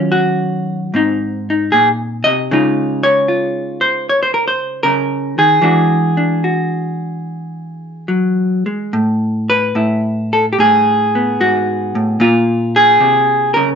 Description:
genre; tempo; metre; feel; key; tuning
solo jazz; 74 BPM; 4/4; swing 68% on 8ths, uneven beats, rubato; unclear; A4 = 439 Hz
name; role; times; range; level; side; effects
vintage hollow-body jazz guitar; solo; 0.0-13.8 s; Ab2 to Eb5; -12 LUFS; equal; none
room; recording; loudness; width
moderate club reverb, RT60 0.7 s; nothing above 7.5 kHz; -12 LUFS; side -7 dB against mid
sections
0.0-8.9 A section; 8.9-13.8 B section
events
none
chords
0.0 Ebm9; 0.9 Ab9; 2.5 Dbadd9; 5.6 E9; 8.9 Asus2; 12.2 Bbm7

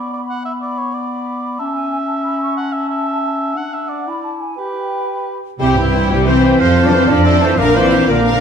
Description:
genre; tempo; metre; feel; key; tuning
cinematic, heroic adventure film score; 121 BPM (dotted quarters); 12/8; straight; unclear; A4 = 439 Hz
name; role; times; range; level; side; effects
mellow clarinet; second line; 0.0-8.4 s; B3 to D5; -22 LUFS; left 2 dB; none
mellow cor anglais; second line; 0.0-8.4 s; B4 to G5; -23 LUFS; right 2 dB; none
mellow hollow flute section; second line; 0.0-8.4 s; F5 to C#6; -25 LUFS; equal; none
bright symphonic violin section; melody; 5.6-8.4 s; G4 to F5; -25 LUFS; left 3 dB; none
rich studio violin section; second line; 5.6-8.4 s; C4 to D5; -24 LUFS; left 2 dB; none
rich symphonic viola section; accompaniment; 5.6-8.4 s; C4 to F4; -21 LUFS; right 2 dB; none
mellow French horn section; sustained chords; 5.6-8.4 s; E3 to D4; -16 LUFS; left 3 dB; none
clear trumpet section; stabs; 5.6-8.4 s; E4 to D5; -22 LUFS; right 1 dB; none
rich studio double bass section; bass; 5.6-8.4 s; Bb1 to F2; -17 LUFS; right 3 dB; none
rich symphonic cello section; bass; 5.6-8.4 s; G2 to F3; -18 LUFS; right 2 dB; none
room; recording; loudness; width
wet recital hall reverb, RT60 1.3 s; none; -14 LUFS; side -7 dB against mid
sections
0.0-5.6 A section; 5.6-8.4 B section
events
none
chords
0.0 Bm; 1.6 A/C#; 3.6 Dadd9; 4.6 G; 5.6 C; 6.6 F; 7.6 Bb

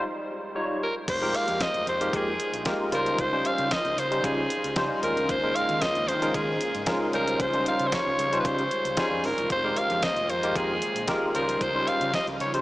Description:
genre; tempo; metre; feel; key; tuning
early-eighties boogie funk; 114 BPM; 4/4; straight; F minor; A4 = 440 Hz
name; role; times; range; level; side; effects
barky tine electric piano; accompaniment; 0.0-12.6 s; G3 to Db5; -28 LUFS; equal; ensemble chorus
raspy alto saxophone; melody; 0.8-12.5 s; Ab4 to F5; -27 LUFS; equal; none
string machine, full ensemble; sustained chords; 1.1-12.6 s; Db3 to G5; -38 LUFS; equal; none
overdriven fingered electric bass; bass; 1.1-12.6 s; E1 to Eb3; -37 LUFS; equal; none
crisp 8-bit digital drum machine; drums; 1.1-12.6 s; crash cymbal, hi-hat, kick drum, snare drum; -34 LUFS; equal; overdrive
room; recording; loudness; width
wet huge ambient reverb, RT60 8.6 s; dreamy mix soaked in reverb, small speaker sound; -24 LUFS; side -18 dB against mid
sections
0.0-1.1 A section; 1.1-12.6 B section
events
break 0.0-1.1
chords
0.0 Eb9; 1.1 Fm11; 2.9 Dbmaj9#11; 5.0 Eb9sus4; 7.1 Dbmaj9#11; 9.5 Fm11; 11.3 Dbmaj9#11

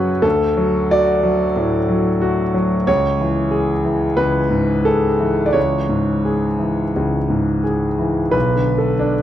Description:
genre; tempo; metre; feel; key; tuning
neoclassical minimalist piano; 89 BPM; 4/4; uneven beats, rubato; unclear; A4 = 441 Hz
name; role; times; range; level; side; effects
warm concert grand piano; solo; 0.0-9.2 s; B1 to F#6; -15 LUFS; equal; none
room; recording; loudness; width
moderate scoring stage reverb, RT60 2.0 s; dark, warm production; -15 LUFS; side -11 dB against mid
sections
0.0-8.3 A section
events
none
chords
0.2 D; 2.9 C#m7; 8.3 Bm7

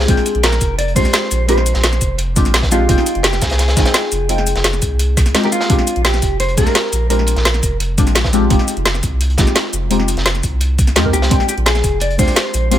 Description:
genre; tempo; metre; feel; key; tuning
liquid drum and bass; 171 BPM; 4/4; straight; unclear; A4 = 441 Hz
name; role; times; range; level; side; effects
mellow electric guitar; melody; 0.0-7.8, 11.1-12.8 s; F4 to D5; -20 LUFS; equal; digital delay
deep mellow chord stab; accompaniment; 0.0-12.8 s; Ab3 to G5; -20 LUFS; left 2 dB; chorus, phaser, digital delay
warm sub bass; bass; 0.0-12.8 s; F1 to F2; -17 LUFS; equal; none
crunchy breakbeat drum kit; drums; 0.0-12.8 s; hi-hat, snare drum; -24 LUFS; equal; high-pass filter on hats, high-pass filter on snare, high-pass filter on room
electronic kick drum; drums; 0.1-12.3 s; none; -16 LUFS; equal; none
garage drum kit; drums; 0.1-12.8 s; hi-hat, shaker, snare drum; -18 LUFS; equal; none
room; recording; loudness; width
digital ambience; none; -12 LUFS; side -11 dB against mid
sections
0.0-12.8 A section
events
none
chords
0.1 Bb13; 2.9 Fm9; 5.7 Bb13; 8.5 Fm9; 11.3 Bb13

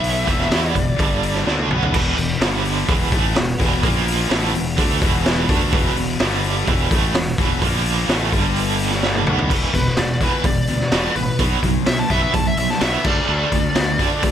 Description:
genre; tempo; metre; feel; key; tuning
hard rock; 127 BPM; 4/4; straight; E minor; A4 = 440 Hz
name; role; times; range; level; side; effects
smooth overdriven lead guitar; melody; 0.0-1.4, 9.7-14.3 s; B4 to A5; -24 LUFS; left 1 dB; none
overdriven electric guitar; riff; 0.0-14.3 s; E2 to E4; -23 LUFS; right 13 dB; tremolo
scooped high-gain guitar; riff; 0.0-14.3 s; E2 to E4; -24 LUFS; left 11 dB; distortion
fuzz fingered electric bass; bass; 0.0-14.3 s; E1 to E2; -24 LUFS; equal; overdrive
raw garage drum kit; drums; 0.0-14.3 s; crash cymbal, hi-hat, kick drum, snare drum, toms; -20 LUFS; equal; none
lush unison pad; sustained chords; 2.4-9.5 s; E3 to A4; -32 LUFS; equal; none
room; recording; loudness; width
light reverb; none; -16 LUFS; side -9 dB against mid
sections
0.0-1.9 A section; 1.9-9.5 B section; 9.5-14.3 C section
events
drum fill 1.5-1.9, 9.0-9.5; lead electric guitar solo 9.5-14.3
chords
0.3 E5; 1.0 G5; 1.5 Bm7; 1.9 E5; 2.4 G5; 2.9 E5; 3.8 A#5; 4.3 E5; 6.2 G5; 6.7 E5; 7.6 A#5; 8.1 E5; 8.3 G5; 9.3 E5; 11.4 B5; 13.0 D5

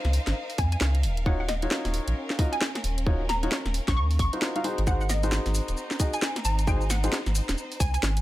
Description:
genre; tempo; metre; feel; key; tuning
UK garage, two-step garage; 133 BPM; 4/4; swing 61% on 16ths; Eb dorian; A4 = 436 Hz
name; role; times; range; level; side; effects
clear chamber violin section; sustained chords; 0.0-8.2 s; C4 to F5; -38 LUFS; left 1 dB; sidechain pumping
saturated sub bass; bass; 0.0-8.2 s; Eb1 to F2; -26 LUFS; equal; none
garage drum kit; drums; 0.0-8.2 s; hi-hat, shaker, snare drum; -30 LUFS; equal; overdrive, small room ambience
hollow square pluck; melody; 0.6-8.0 s; Eb5 to Db6; -34 LUFS; left 1 dB; ensemble chorus, vintage 12-bit sampler grit, ping-pong delay
electronic kick drum; drums; 0.6-7.9 s; none; -25 LUFS; equal; overdrive, small room ambience
warm baby grand piano; stabs; 1.3-7.1 s; Eb4 to F5; -32 LUFS; left 1 dB; low-pass filter, ping-pong delay
room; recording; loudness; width
little or no reverb; none; -24 LUFS; side -16 dB against mid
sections
0.0-8.2 A section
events
none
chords
0.0 Dbmaj9; 1.3 Ebm9; 4.6 Ab7

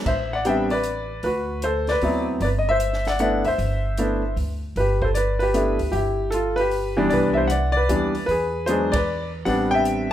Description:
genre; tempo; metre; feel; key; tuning
jazz piano trio; 153 BPM; 3/4; swing 65% on 8ths; G major; A4 = 439 Hz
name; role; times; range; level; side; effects
clear baby grand piano; melody; 0.0-10.1 s; E3 to G5; -21 LUFS; left 1 dB; none
upright bass; bass; 0.1-10.1 s; G1 to E2; -26 LUFS; right 1 dB; none
compact cocktail drum kit; drums; 0.1-10.0 s; crash cymbal, hi-hat, kick drum, ride cymbal, snare drum; -33 LUFS; right 2 dB; none
room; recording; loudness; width
moderate large studio reverb, RT60 1.2 s; minimal, uncompressed stereo recording; -20 LUFS; side -11 dB against mid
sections
0.0-4.8 A section; 4.8-10.1 A section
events
band accent 8.9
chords
0.1 Am11; 1.2 D13; 2.4 G6; 4.8 Gadd9; 5.9 G6; 7.1 Cmaj9; 8.3 E7; 9.5 Am11

